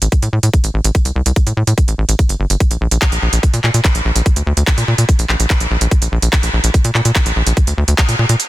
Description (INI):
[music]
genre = psychedelic trance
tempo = 145 BPM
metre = 4/4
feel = straight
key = unclear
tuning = A4 = 440 Hz
[part]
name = tight sequencer bass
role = bass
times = 0.0-8.4 s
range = G1 to Bb2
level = -14 LUFS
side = equal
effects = none
[part]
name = techno drum kit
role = drums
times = 0.0-8.5 s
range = handclaps, hi-hat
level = -18 LUFS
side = right 1 dB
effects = none
[part]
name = electronic kick drum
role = drums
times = 0.1-8.1 s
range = none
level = -13 LUFS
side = equal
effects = none
[sound]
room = little or no reverb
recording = dense, heavily limited modern master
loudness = -12 LUFS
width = side -16 dB against mid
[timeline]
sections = 0.0-8.5 A section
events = none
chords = none